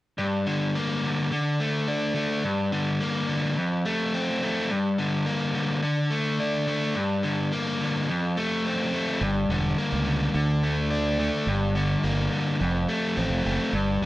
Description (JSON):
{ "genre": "rock", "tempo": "106 BPM", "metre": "4/4", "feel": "straight", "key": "G minor", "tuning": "A4 = 441 Hz", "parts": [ { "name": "biting overdriven guitar", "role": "riff", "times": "0.2-14.1 s", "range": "F2 to D4", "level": "-24 LUFS", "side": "left 1 dB", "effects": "none" }, { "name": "growling fingered electric bass", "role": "bass", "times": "9.2-14.1 s", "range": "E1 to D2", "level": "-27 LUFS", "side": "right 1 dB", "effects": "overdrive" } ], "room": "light reverb", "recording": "dry, close 1970s-style studio recording", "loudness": "-23 LUFS", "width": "side -16 dB against mid", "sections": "0.2-14.1 A section", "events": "none", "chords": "0.2 Gm; 1.3 D5; 2.4 Gm; 3.6 F; 4.7 Gm; 5.8 D5; 7.0 Gm; 8.1 F; 9.2 Gm; 10.3 D5; 11.5 Gm; 12.6 F", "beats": "| 0.18 0.74 1.31 1.87 | 2.44 3.00 3.57 4.13 | 4.70 5.26 5.83 6.39 | 6.96 7.52 8.09 8.65 | 9.22 9.78 10.35 10.91 | 11.48 12.04 12.61 13.17 | 13.74" }